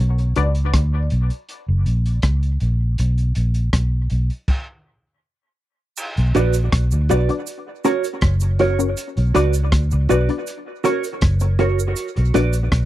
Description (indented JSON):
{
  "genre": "dub reggae",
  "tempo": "80 BPM",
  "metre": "4/4",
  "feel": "straight",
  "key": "B harmonic minor",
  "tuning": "A4 = 440 Hz",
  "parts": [
    { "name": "vintage muted fingered electric bass", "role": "bass", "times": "0.0-12.9 s", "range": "F#1 to D2", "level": "-17 LUFS", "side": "equal", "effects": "none" },
    { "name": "crunchy breakbeat drum kit", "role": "drums", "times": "0.2-12.9 s", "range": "crash cymbal, hi-hat, kick drum, rim click", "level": "-22 LUFS", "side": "equal", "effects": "none" },
    { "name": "filtered dub chord stab", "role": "stabs", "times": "0.4-0.6, 6.3-12.5 s", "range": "C#4 to D5", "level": "-25 LUFS", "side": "left 6 dB", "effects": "phaser, low-pass filter, dub echo" },
    { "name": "cabasa", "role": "percussion", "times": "6.0-12.7 s", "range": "none", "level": "-34 LUFS", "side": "right 9 dB", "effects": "dub echo" },
    { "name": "mellow electric guitar", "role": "accompaniment", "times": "6.3-12.5 s", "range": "F#4 to D5", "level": "-22 LUFS", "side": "right 6 dB", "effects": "analog chorus, low-pass filter, dub echo" }
  ],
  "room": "little or no reverb",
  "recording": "dry, close 1970s-style studio recording",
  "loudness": "-17 LUFS",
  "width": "side -14 dB against mid",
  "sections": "0.0-6.0 A section; 6.0-12.9 B section",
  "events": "break 0.0-6.0; stop 4.5-6.0",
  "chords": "0.0 Bm; 1.5 F# (rootless); 3.0 N.C.; 6.0 Bm; 7.5 F#; 9.0 Bm; 10.5 F#; 12.0 Bm"
}